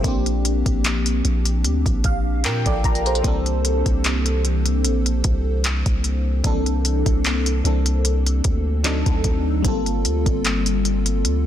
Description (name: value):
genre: contemporary R&B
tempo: 75 BPM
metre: 4/4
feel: swing 54% on 16ths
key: unclear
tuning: A4 = 441 Hz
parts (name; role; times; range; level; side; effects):
- FM electric piano with soft pad layer; accompaniment; 0.0-11.5 s; E3 to Bb5; -23 LUFS; left 1 dB; chorus, phaser
- long sustained 808-style bass; bass; 0.0-11.5 s; G1 to Bb2; -21 LUFS; equal; none
- smooth R&B drum kit; drums; 0.0-11.4 s; handclaps, hi-hat, kick drum; -22 LUFS; equal; none
room: little or no reverb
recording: dense, heavily limited modern master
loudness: -18 LUFS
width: side -11 dB against mid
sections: 0.0-11.5 A section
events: FM electric piano fill 1.6-3.2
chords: 0.0 Bb69; 3.2 C13; 8.8 D7b9; 9.6 Gm11